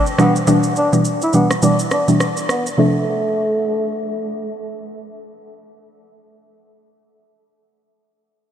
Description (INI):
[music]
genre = afrobeats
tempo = 104 BPM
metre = 4/4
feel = swing 58% on 16ths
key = D dorian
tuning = A4 = 436 Hz
[part]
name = breathy tenor saxophone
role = melody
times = 0.0-4.5 s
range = A3 to E4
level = -20 LUFS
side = equal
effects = low-pass filter, diffuse ambient delay
[part]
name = electronic shaker and rim click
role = drums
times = 0.1-2.8 s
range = none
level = -24 LUFS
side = equal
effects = vintage 12-bit sampler grit
[part]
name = mallet-like synth pluck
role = accompaniment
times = 0.2-6.6 s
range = B2 to D4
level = -17 LUFS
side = equal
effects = chorus, low-pass filter
[sound]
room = moderate huge ambient reverb, RT60 4.2 s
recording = dreamy mix soaked in reverb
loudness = -15 LUFS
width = side -9 dB against mid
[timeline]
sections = 0.0-2.8 A section; 2.8-5.1 B section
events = filter sweep 0.0-2.8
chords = 0.2 Em7; 2.8 Dm7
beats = | 0.47 1.05 1.63 2.21 | 2.78 3.36 3.94 4.51